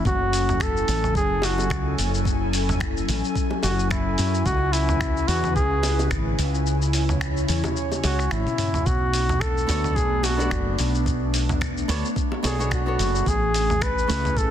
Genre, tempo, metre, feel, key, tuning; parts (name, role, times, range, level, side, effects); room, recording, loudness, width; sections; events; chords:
sunset chillout; 109 BPM; 4/4; swing 56% on 16ths; B dorian; A4 = 440 Hz
warm flugelhorn; melody; 0.0-14.5 s; E4 to B4; -26 LUFS; equal; ping-pong delay
airy breathy pad; sustained chords; 0.0-14.5 s; C#3 to G#5; -28 LUFS; left 1 dB; chorus
woody fretless electric bass; bass; 0.1-14.5 s; F#1 to F#2; -24 LUFS; equal; wide subtle chorus
dusty soul sampler-style drum kit; drums; 0.1-14.5 s; finger snaps, hi-hat, shaker, toms; -29 LUFS; equal; soft clipping on snare
electronic kick drum; drums; 0.1-14.5 s; -27 LUFS; equal
bongos; percussion; 1.4-12.6 s; -32 LUFS; left 2 dB
flamenco guitar; accompaniment; 9.7-14.5 s; A3 to D5; -30 LUFS; moving between left 4 dB and right 6 dB; auto-pan, digital delay
light reverb; dense, heavily limited modern master; -20 LUFS; side -10 dB against mid
0.0-14.5 A section
kick drops out 6.7-8.9; drum fill 8.4-8.9
0.1 F#m7; 4.5 C#m7; 8.9 Bm9; 13.3 Amaj7